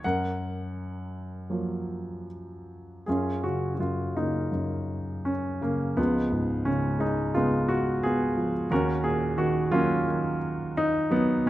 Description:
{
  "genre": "classical, lyrical solo piano",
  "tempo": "73-90 BPM",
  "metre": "4/4",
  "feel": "rubato",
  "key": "F# major",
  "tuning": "A4 = 440 Hz",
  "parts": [
    { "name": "warm grand piano", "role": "solo", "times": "0.0-11.5 s", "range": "C#2 to F#5", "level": "-25 LUFS", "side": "equal", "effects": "none" }
  ],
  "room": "moderate recital hall reverb, RT60 1.6 s",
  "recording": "none",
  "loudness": "-25 LUFS",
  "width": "side -14 dB against mid",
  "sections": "0.0-3.1 A section; 3.1-11.5 A section",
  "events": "none",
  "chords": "0.0 F#maj7; 6.0 C#7; 8.7 D#m7"
}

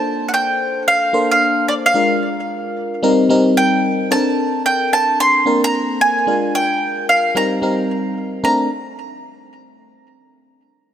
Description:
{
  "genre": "R&B",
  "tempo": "111 BPM",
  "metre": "4/4",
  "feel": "swing 63% on 16ths",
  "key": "Bb major",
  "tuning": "A4 = 440 Hz",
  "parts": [
    { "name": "mandolin", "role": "melody", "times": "0.0-8.7 s", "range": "D5 to C6", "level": "-16 LUFS", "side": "right 1 dB", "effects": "none" },
    { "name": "FM electric piano", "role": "accompaniment", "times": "0.0-8.7 s", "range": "G3 to C5", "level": "-18 LUFS", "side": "left 1 dB", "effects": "chorus, phaser" }
  ],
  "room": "moderate plate reverb, RT60 3.2 s",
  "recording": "none",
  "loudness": "-14 LUFS",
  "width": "side -9 dB against mid",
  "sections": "0.0-8.4 A section; 8.4-10.6 B section",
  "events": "none",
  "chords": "0.0 Bbmaj9; 1.9 Bb7; 3.0 Eb6; 4.1 Bbmaj9; 6.3 Bb7; 7.4 Eb6; 8.4 Bbmaj9"
}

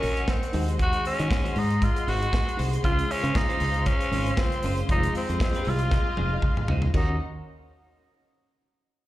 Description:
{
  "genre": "disco",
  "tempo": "117 BPM",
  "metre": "4/4",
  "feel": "swing 56% on 16ths",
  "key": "Eb dorian",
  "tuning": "A4 = 437 Hz",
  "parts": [
    { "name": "raspy tenor saxophone", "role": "melody", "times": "0.0-7.2 s", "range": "C4 to Gb4", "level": "-29 LUFS", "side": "equal", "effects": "slapback echo" },
    { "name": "clean electric guitar", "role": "accompaniment", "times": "0.0-7.1 s", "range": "Db4 to Db5", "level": "-38 LUFS", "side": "right 5 dB", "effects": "spring reverb, slapback echo" },
    { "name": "reed electric piano", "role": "accompaniment", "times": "0.0-7.2 s", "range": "Db3 to C5", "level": "-37 LUFS", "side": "left 4 dB", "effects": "fast tremolo, slapback echo" },
    { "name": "dark studio string section", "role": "sustained chords", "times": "0.0-7.2 s", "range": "Db4 to Db6", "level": "-34 LUFS", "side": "left 3 dB", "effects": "none" },
    { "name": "fingered electric bass", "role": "bass", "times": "0.0-7.2 s", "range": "F1 to Eb3", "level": "-26 LUFS", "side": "equal", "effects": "none" },
    { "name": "modern studio drum kit", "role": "drums", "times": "0.0-7.1 s", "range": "crash cymbal, hi-hat, kick drum, snare drum, toms", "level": "-27 LUFS", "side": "equal", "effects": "none" }
  ],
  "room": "small room ambience",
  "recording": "live gig heard through the venue's PA, club reverb",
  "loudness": "-22 LUFS",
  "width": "side -15 dB against mid",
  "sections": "0.0-6.9 A section; 6.9-9.0 B section",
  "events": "drum fill 5.9-6.9",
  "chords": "0.0 Ebm7; 0.5 Ab7/Eb; 2.8 Dbmaj7; 4.9 Fm7; 6.9 Ebm7"
}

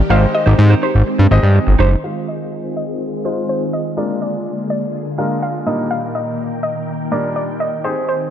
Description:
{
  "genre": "pop",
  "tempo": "124 BPM",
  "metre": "4/4",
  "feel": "straight",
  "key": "F dorian",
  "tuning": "A4 = 440 Hz",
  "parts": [
    { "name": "string machine, violas", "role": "sustained chords", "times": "0.0-8.3 s", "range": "Bb2 to G5", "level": "-22 LUFS", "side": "left 1 dB", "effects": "phaser, ensemble chorus, low-pass filter" },
    { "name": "fat analog bass", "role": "bass", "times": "0.0-2.0 s", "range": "Gb1 to Ab2", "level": "-10 LUFS", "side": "equal", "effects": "none" },
    { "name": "soft round pluck", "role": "melody", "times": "0.1-8.3 s", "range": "C5 to F5", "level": "-22 LUFS", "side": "equal", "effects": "chorus, low-pass filter, digital delay" },
    { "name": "clear baby grand piano", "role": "accompaniment", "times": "0.1-8.3 s", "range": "Bb2 to Eb5", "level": "-24 LUFS", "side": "equal", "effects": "low-pass filter" },
    { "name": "direct-recorded clean electric guitar", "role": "riff", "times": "0.1-2.0 s", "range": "Eb4 to C5", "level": "-25 LUFS", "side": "right 8 dB", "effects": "lush chorus" }
  ],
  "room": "light reverb",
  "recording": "dark, warm production",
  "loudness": "-15 LUFS",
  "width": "side -10 dB against mid",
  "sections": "0.0-2.0 A section; 2.0-8.3 B section",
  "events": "drop 0.0-2.0; filter sweep 2.0-8.3",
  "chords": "0.1 Abmaj7; 2.0 Fm7; 4.0 Bb7; 5.7 Ebmaj7/Bb"
}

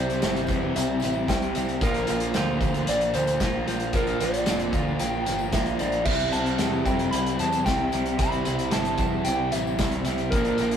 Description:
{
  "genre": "rock, shoegaze and dream pop",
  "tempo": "113 BPM",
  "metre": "4/4",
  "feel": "straight",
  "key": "C major",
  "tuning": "A4 = 440 Hz",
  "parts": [
    { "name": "soft struck synth lead", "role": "melody", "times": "0.0-10.8 s", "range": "Bb4 to B5", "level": "-28 LUFS", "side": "equal", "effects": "chorus" },
    { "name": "distorted electric guitar", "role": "riff", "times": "0.0-10.8 s", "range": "Bb2 to C4", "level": "-32 LUFS", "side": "left 3 dB", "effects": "distortion" },
    { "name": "overdriven electric guitar", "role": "riff", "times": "0.0-10.8 s", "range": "Bb2 to F4", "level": "-30 LUFS", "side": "right 6 dB", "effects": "none" },
    { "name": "thick fuzz guitar", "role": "riff", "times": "0.0-10.8 s", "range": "Bb2 to C4", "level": "-31 LUFS", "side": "left 4 dB", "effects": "distortion" },
    { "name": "growling picked electric bass", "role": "bass", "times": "0.0-10.8 s", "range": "F1 to F2", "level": "-31 LUFS", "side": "equal", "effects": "overdrive" },
    { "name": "loose indie drum kit", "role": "drums", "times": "0.1-10.8 s", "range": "crash cymbal, hi-hat, kick drum, snare drum", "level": "-28 LUFS", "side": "equal", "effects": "none" },
    { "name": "tambourine", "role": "percussion", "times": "0.1-10.4 s", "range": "none", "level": "-47 LUFS", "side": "left 3 dB", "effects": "none" }
  ],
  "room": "moderate stone room reverb, RT60 1.1 s",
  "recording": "rough rehearsal-room recording",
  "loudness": "-22 LUFS",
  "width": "side -8 dB against mid",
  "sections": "0.0-10.8 A section",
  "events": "none",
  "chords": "0.0 C; 1.8 Bb; 6.1 C"
}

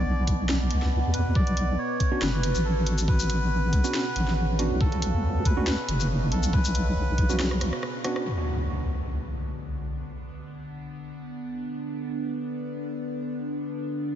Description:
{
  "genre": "deep dubstep",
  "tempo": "139 BPM",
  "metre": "4/4",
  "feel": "swing 53% on 16ths, half-time",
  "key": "B minor",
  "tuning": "A4 = 440 Hz",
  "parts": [
    { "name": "melodica", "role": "melody", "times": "0.0-7.4 s", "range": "A4 to D5", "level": "-34 LUFS", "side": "equal", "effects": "dub echo" },
    { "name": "overtone-sweeping drone", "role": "sustained chords", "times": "0.0-14.2 s", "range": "B2 to D4", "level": "-32 LUFS", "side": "right 1 dB", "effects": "chorus, built-in reverb, phaser" },
    { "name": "deep soft wobble bass", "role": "bass", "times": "0.0-7.7 s", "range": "F#1 to E2", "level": "-25 LUFS", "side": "equal", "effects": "chorus" },
    { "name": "electronic kick drum", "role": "drums", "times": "0.3-7.3 s", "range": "none", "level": "-24 LUFS", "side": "equal", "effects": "overdrive, small room reverb" },
    { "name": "garage drum kit", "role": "drums", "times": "0.3-8.2 s", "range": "hi-hat, rim click, shaker, snare drum", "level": "-33 LUFS", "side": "left 1 dB", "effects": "overdrive, low-pass filter on hats, small room reverb, low-pass filter on snare, low-pass filter on perc" },
    { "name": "tine electric piano", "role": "stabs", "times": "2.1-8.2 s", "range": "B3 to F#4", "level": "-34 LUFS", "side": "right 3 dB", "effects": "medium stereo tremolo, low-pass filter, dub echo" },
    { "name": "impact", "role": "sound effects", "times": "8.3-10.0 s", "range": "none", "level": "-31 LUFS", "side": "equal", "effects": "none" }
  ],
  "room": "light reverb",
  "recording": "nothing above 7.6 kHz",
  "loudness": "-24 LUFS",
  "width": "side -10 dB against mid",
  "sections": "0.0-8.3 A section; 8.3-14.2 B section",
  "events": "drum fill 7.4-8.3; break 7.8-8.3; impact 8.3-10.0",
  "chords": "0.0 Bmadd9; 8.3 Bm"
}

